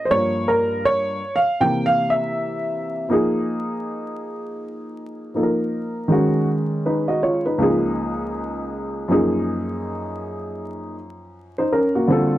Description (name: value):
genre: hip hop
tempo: 80 BPM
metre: 4/4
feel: swing 62% on 16ths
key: F minor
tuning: A4 = 440 Hz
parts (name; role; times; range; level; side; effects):
- dark upright piano; solo; 0.0-12.4 s; Db2 to G5; -19 LUFS; equal; none
room: light reverb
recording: dry, close 1970s-style studio recording, vinyl crackle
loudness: -19 LUFS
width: side -14 dB against mid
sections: 0.0-3.1 A section; 3.1-12.4 B section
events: upright piano solo 0.0-3.1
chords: 0.1 Gm7b5; 1.6 C7; 3.1 Fm7; 6.1 Ab5; 7.6 Db; 9.1 Gb6